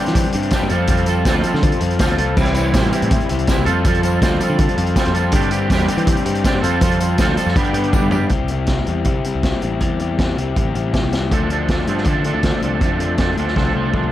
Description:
indie rock; 161 BPM; 4/4; straight; C major; A4 = 442 Hz
crunchy overdriven guitar; riff; 0.0-14.1 s; F3 to A4; -22 LUFS; left 7 dB
twangy electric guitar; riff; 0.0-8.3, 11.3-14.1 s; G2 to A4; -21 LUFS; right 6 dB; ensemble chorus, digital delay
modern bright picked electric bass; bass; 0.1-14.1 s; A1 to E3; -21 LUFS; equal
vintage drum kit; drums; 0.1-14.0 s; crash cymbal, hi-hat, kick drum, snare drum, toms; -19 LUFS; equal
tambourine; percussion; 0.2-8.2 s; -39 LUFS; left 8 dB
light reverb; dark, warm production; -15 LUFS; side -13 dB against mid
0.0-8.3 A section; 8.3-14.1 B section
drum fill 7.9-8.3, 13.6-14.1
0.0 Gsus4; 0.7 Fadd9; 2.4 C; 3.7 Fadd9; 5.3 Gsus4; 6.6 Fadd9; 7.6 G; 8.3 C; 11.3 Dm7
0.15 0.53 | 0.89 1.26 1.63 2.00 | 2.38 2.75 3.12 3.49 | 3.86 4.23 4.60 4.97 | 5.34 5.71 6.08 6.45 | 6.82 7.20 7.57 7.94 | 8.31 8.69 9.06 9.44 | 9.81 10.19 10.56 10.94 | 11.32 11.69 12.07 12.45 | 12.82 13.20 13.57 13.95

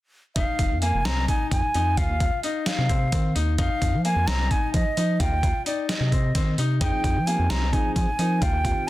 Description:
progressive instrumental, band music in an uneven meter; 261 BPM (eighths); 7/8; straight; F minor; A4 = 440 Hz
concert flute; melody; 0.4-8.9 s; D5 to Bb5; -27 LUFS; right 1 dB; digital delay
bright concert grand piano; arpeggios; 0.4-8.8 s; Bb3 to F4; -31 LUFS; left 7 dB
rubbery square bass; bass; 0.4-8.7 s; F1 to F3; -24 LUFS; equal
trip hop sampler-style drum kit; drums; 0.4-8.8 s; hi-hat, kick drum, snare drum; -26 LUFS; equal
mellow tonewheel organ; accompaniment; 6.8-8.9 s; Eb3 to Bb4; -32 LUFS; right 2 dB; slow rotary speaker
light reverb; dense, heavily limited modern master; -21 LUFS; side -16 dB against mid
0.4-8.9 A section
0.4 Fm7; 2.0 Ebsus2; 3.6 F5; 5.2 Eb69; 6.8 Fm7
| 0.36 0.59 0.82 1.05 1.28 1.51 1.75 | 1.98 2.21 2.44 2.67 2.90 3.13 3.36 | 3.59 3.82 4.05 4.28 4.51 4.74 4.97 | 5.20 5.43 5.66 5.89 6.12 6.35 6.58 | 6.81 7.04 7.27 7.50 7.73 7.96 8.19 | 8.41 8.64 8.87

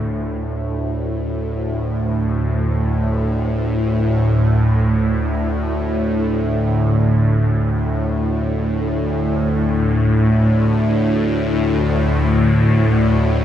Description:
ambient; free time; A4 = 440 Hz
bowed-like drone; drone; 0.0-13.4 s; D2 to A2; -16 LUFS; equal; built-in reverb, phaser
moderate plate reverb, RT60 3.0 s; dreamy mix soaked in reverb; -16 LUFS; side -10 dB against mid
0.1-13.4 A section
0.1 D5
free time

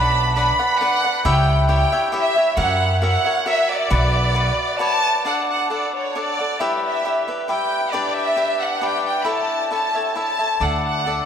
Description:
mexican folk, mariachi; 135 BPM; 3/4; straight; B minor, D major from 5.3 s; A4 = 440 Hz
rich chamber violin section; melody; 0.0-11.3 s; C#5 to B5; -20 LUFS; right 1 dB; diffuse ambient delay
cavaquinho; accompaniment; 0.0-11.3 s; D4 to F#5; -22 LUFS; left 2 dB
upright bass; bass; 0.0-4.5, 10.6-11.2 s; B1 to F#2; -20 LUFS; right 1 dB
wet cathedral reverb, RT60 6.7 s; dreamy mix soaked in reverb; -17 LUFS; side -8 dB against mid
0.0-5.3 A section; 5.3-11.3 B section
0.0 Bm; 1.3 C#dim; 2.6 F#7; 3.9 Bmadd9; 5.3 D; 6.6 Em; 7.9 G; 9.3 A; 10.6 Dsus2
0.36 0.81 | 1.25 1.69 2.14 | 2.58 3.02 3.46 | 3.91 4.35 4.80 | 5.25 5.70 6.15 | 6.59 7.03 7.48 | 7.92 8.36 8.80 | 9.25 9.70 10.15 | 10.60 11.05

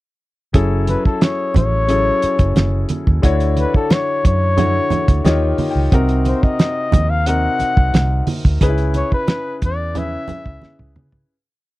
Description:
lush 1970s-style soul; 89 BPM; 4/4; straight; F# minor; A4 = 440 Hz
clear concert grand piano; accompaniment; 0.5-11.3 s; C3 to G5; -21 LUFS; left 2 dB
vintage muted fingered electric bass; bass; 0.5-11.2 s; F#1 to C#3; -18 LUFS; equal
cloth-damped thuddy drum kit; drums; 0.5-11.3 s; hi-hat, kick drum, snare drum, toms; -15 LUFS; right 1 dB
congas; percussion; 0.5-11.1 s; -24 LUFS; right 4 dB
warm flugelhorn; melody; 0.9-11.0 s; A4 to Gb5; -20 LUFS; left 2 dB
little or no reverb; dry, close 1970s-style studio recording; -14 LUFS; side -18 dB against mid
0.5-11.3 verse
grand piano fill 4.9-5.9; fade-out 8.6-11.3; drum fill 10.6-11.3
0.5 F#m9; 3.2 Dmaj7; 5.2 D#7; 5.9 Cm7b5; 8.6 C#m7
| 0.54 1.22 1.89 2.56 | 3.23 3.90 4.58 5.25 | 5.92 6.59 7.26 7.94 | 8.61 9.28 9.95 10.62

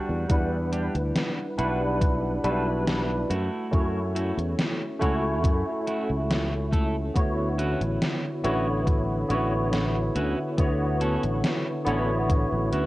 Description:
vaporwave; 70 BPM; 4/4; straight; D major; A4 = 440 Hz
clean electric guitar; riff; 0.0-12.9 s; G3 to A4; -34 LUFS; right 1 dB; wide subtle chorus, vintage 12-bit sampler grit, low-pass filter, tape echo
sustaining fretless electric bass; bass; 0.1-12.9 s; A1 to F#2; -28 LUFS; equal
barky tine electric piano; accompaniment; 0.3-12.9 s; D3 to F#5; -27 LUFS; equal; ensemble chorus, tape echo
electronic kick drum; drums; 0.3-12.5 s; -24 LUFS; equal
gated 80s digital drum machine; drums; 0.3-12.9 s; hi-hat, snare drum; -29 LUFS; equal; gated reverb, gated reverb snare, overdrive
light reverb; worn, warbling old tape, cassette tape, warbly pitch drift; -23 LUFS; side -17 dB against mid
0.0-12.9 A section
0.0 Em9; 3.3 F#m7; 7.2 Dmaj13
| 0.30 1.16 2.01 2.87 | 3.73 4.58 5.44 6.30 | 7.16 8.01 8.87 9.73 | 10.59 11.44 12.30

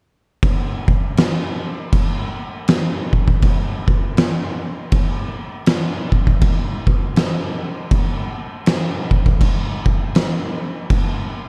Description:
metal; 80 BPM; 4/4; swing 60% on 8ths
oversized low-tuned drum kit; drums; 0.4-11.1 s; crash cymbal, kick drum, snare drum; -19 LUFS; equal
little or no reverb; dark, warm production; -19 LUFS; mono
0.4-11.5 A section
| 0.43 1.18 1.93 2.68 | 3.43 4.17 4.92 5.67 | 6.42 7.17 7.91 8.66 | 9.41 10.15 10.90

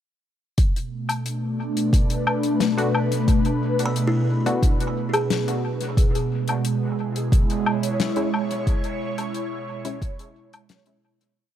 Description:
ambient dub; 89 BPM; 4/4; straight; B dorian; A4 = 440 Hz
airy breathy pad; sustained chords; 0.6-11.4 s; B2 to C#5; -23 LUFS; right 1 dB; chorus, phaser
electronic kick drum; drums; 0.6-10.2 s; -20 LUFS; equal; studio reverb
tight funk drum kit; drums; 0.6-11.3 s; hi-hat, snare drum, woodblock; -28 LUFS; left 4 dB; studio reverb, dub echo
filtered dub chord stab; stabs; 2.8-10.0 s; G#3 to F#4; -31 LUFS; left 2 dB; chorus, dub echo
buzzing kalimba; arpeggios; 3.9-8.4 s; E4 to B5; -30 LUFS; equal; dub echo
light reverb, small room ambience; -20 LUFS; side -10 dB against mid
0.6-11.4 groove
fade-out 7.8-11.4
0.6 Bm7; 6.0 C#m/B
| 0.58 1.25 1.93 2.60 | 3.28 3.95 4.63 5.30 | 5.97 6.65 7.32 8.00 | 8.67 9.35 10.02 10.69

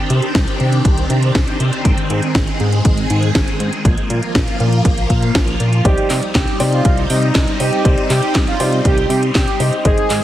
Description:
italo disco; 120 BPM; 4/4; straight; C minor; A4 = 440 Hz
phased string machine; sustained chords; 0.0-10.2 s; Eb3 to C5; -21 LUFS; equal; ensemble chorus, phaser
chorused synth bass; bass; 0.1-10.2 s; Ab1 to C3; -18 LUFS; equal
house drum kit; drums; 0.1-10.2 s; handclaps, hi-hat, snare drum; -22 LUFS; equal; small room ambience
electronic kick drum; drums; 0.3-10.0 s; -17 LUFS; equal; small room ambience
analog synth brass; melody; 5.8-10.2 s; Eb4 to Ab4; -20 LUFS; right 2 dB; chorus, tape echo
dark baby grand piano; stabs; 5.8-10.2 s; Eb4 to Eb5; -22 LUFS; left 2 dB
light reverb; heavily compressed radio sound, multiband compression; -13 LUFS; side -13 dB against mid
0.0-10.2 A section
0.0 Cmadd9; 1.9 Ab; 3.9 Bb5; 5.9 Cmadd9
0.35 0.85 1.35 | 1.85 2.35 2.85 3.35 | 3.85 4.35 4.85 5.35 | 5.85 6.35 6.85 7.35 | 7.85 8.35 8.85 9.35 | 9.85

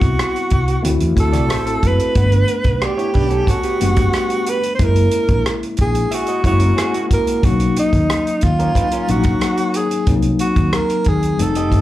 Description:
lush 1970s-style soul; 91 BPM; 4/4; straight; A4 = 440 Hz
breathy tenor saxophone; melody; 0.0-11.8 s; D#4 to C5; -20 LUFS; right 1 dB; plate reverb, slapback echo
tine electric piano; accompaniment; 0.0-11.8 s; F#3 to F#5; -21 LUFS; left 4 dB; overdrive, fast stereo tremolo, plate reverb
woody fretless electric bass; bass; 0.0-11.8 s; F1 to E2; -17 LUFS; equal
warm soul drum kit; drums; 0.0-11.8 s; hi-hat, kick drum, rim click; -19 LUFS; equal
electric guitar through a small old amp; riff; 1.3-11.8 s; Bb3 to Fb5; -26 LUFS; right 2 dB; slapback echo
light reverb; live gig heard through the venue's PA, club reverb; -14 LUFS; side -14 dB against mid
0.0-11.8 A section
0.0 Am7 (rootless); 0.8 D7; 2.2 Gmaj7; 4.8 Gb7; 7.4 Bmaj7; 10.1 Cm7b5
0.17 0.83 1.49 | 2.15 2.81 3.48 4.14 | 4.80 5.46 6.12 6.78 | 7.44 8.10 8.76 9.42 | 10.08 10.73 11.39

